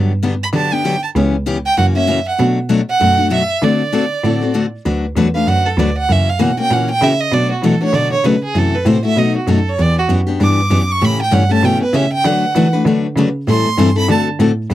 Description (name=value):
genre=acoustic string swing (jazz manouche)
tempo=195 BPM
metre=4/4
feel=swing 58% on 8ths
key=D major from 4.9 s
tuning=A4 = 440 Hz
part: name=picked steel-string acoustic guitar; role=accompaniment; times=0.0-14.7 s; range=B2 to B4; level=-17 LUFS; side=left 4 dB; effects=none
part: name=rich cello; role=bass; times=0.0-14.7 s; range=C#2 to E3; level=-16 LUFS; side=right 1 dB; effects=none
part: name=clear violin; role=melody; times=0.4-14.2 s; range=F#4 to D6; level=-17 LUFS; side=right 3 dB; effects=none
room=little or no reverb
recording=dry, close 1970s-style studio recording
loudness=-12 LUFS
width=side -13 dB against mid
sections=0.0-4.9 A section; 4.9-14.7 B section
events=violin solo 4.9-14.7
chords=0.0 Gmaj7; 1.2 C#m7b5; 1.8 F#7; 2.4 Bm7; 3.6 D7; 4.9 D6; 6.1 F#7; 7.3 Bm11; 8.6 F#m7b5; 9.2 B7; 9.8 Em9; 11.0 A7; 12.2 D6; 13.5 Am7; 14.1 D7